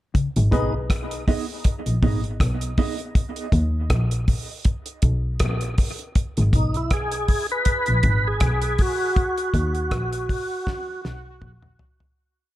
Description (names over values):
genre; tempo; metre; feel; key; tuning
dub reggae; 80 BPM; 4/4; swing 56% on 16ths; G# minor; A4 = 440 Hz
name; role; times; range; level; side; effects
mellow electric guitar; arpeggios; 0.1-0.3 s; C#3; -27 LUFS; left 4 dB; lush chorus, dub echo
damped 70s drum kit; drums; 0.1-12.2 s; hi-hat, kick drum, rim click, snare drum, toms; -22 LUFS; equal; none
dark double bass; bass; 0.4-11.8 s; G#1 to D#2; -23 LUFS; equal; none
tonewheel organ; melody; 0.5-0.7, 6.6-11.0 s; D#4 to B4; -25 LUFS; equal; overdrive, chorus vibrato, slow rotary speaker, dub echo
mellow electric guitar; accompaniment; 0.5-3.0 s; B3 to D#5; -29 LUFS; right 6 dB; analog chorus, dub echo
percussive organ stab; stabs; 0.5-0.7 s; D#4 to B4; -31 LUFS; left 2 dB; chorus, dub echo
room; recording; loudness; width
light reverb, small room ambience; echo-heavy mix; -20 LUFS; side -15 dB against mid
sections
0.1-12.2 A section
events
fade-out 9.2-12.2; drum fill 10.7-12.2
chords
0.1 G#m; 3.2 D#5; 6.2 G#m; 9.2 D#m